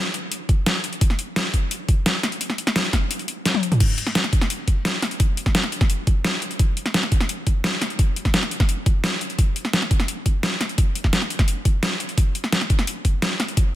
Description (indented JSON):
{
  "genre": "drum and bass",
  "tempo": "172 BPM",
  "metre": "4/4",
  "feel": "straight",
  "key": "none",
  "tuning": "none",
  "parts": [
    { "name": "dubstep drum kit", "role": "drums", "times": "0.1-13.6 s", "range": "crash cymbal, hi-hat, snare drum, toms", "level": "-22 LUFS", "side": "equal", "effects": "overdrive, studio ambience" },
    { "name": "electronic kick drum", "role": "drums", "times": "0.5-13.6 s", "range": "none", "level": "-19 LUFS", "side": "equal", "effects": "overdrive, studio ambience" }
  ],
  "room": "light reverb",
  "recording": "dense, heavily limited modern master",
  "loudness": "-19 LUFS",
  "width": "side -14 dB against mid",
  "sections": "0.0-3.8 A section; 3.8-13.8 A section",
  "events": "drop 0.0-3.8, 3.8-13.8; kick drops out 3.1-3.8; drum fill 3.5-3.8",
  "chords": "none",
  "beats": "0.32 0.66 | 1.01 1.36 1.71 2.06 | 2.41 2.76 3.11 3.46 | 3.80 4.15 4.50 4.85 | 5.20 5.55 5.90 6.25 | 6.59 6.94 7.29 7.64 | 7.99 8.34 8.69 9.04 | 9.38 9.73 10.08 10.43 | 10.78 11.13 11.48 11.83 | 12.18 12.53 12.87 13.22 | 13.57"
}